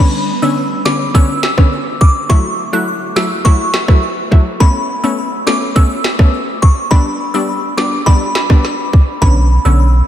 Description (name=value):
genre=dancehall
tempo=104 BPM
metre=4/4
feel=straight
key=B minor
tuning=A4 = 438 Hz
part: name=glassy synth bell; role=melody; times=0.0-9.7 s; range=B5 to F#6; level=-18 LUFS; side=equal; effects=chorus, ping-pong delay
part: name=analog pluck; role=accompaniment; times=0.0-10.1 s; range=D3 to E4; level=-18 LUFS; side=left 2 dB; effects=chorus
part: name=island pop drum kit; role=drums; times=0.9-9.4 s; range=kick drum, rim click, snare drum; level=-12 LUFS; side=equal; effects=none
part: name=punchy sub bass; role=bass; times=9.2-10.0 s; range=B1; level=-9 LUFS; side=equal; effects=none
room=moderate cathedral reverb, RT60 5.2 s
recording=dreamy mix soaked in reverb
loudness=-11 LUFS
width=side -11 dB against mid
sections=0.0-10.1 A section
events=none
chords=0.0 Bmadd9; 2.3 F#m7; 4.6 Aadd9; 6.9 G; 9.2 Bmadd9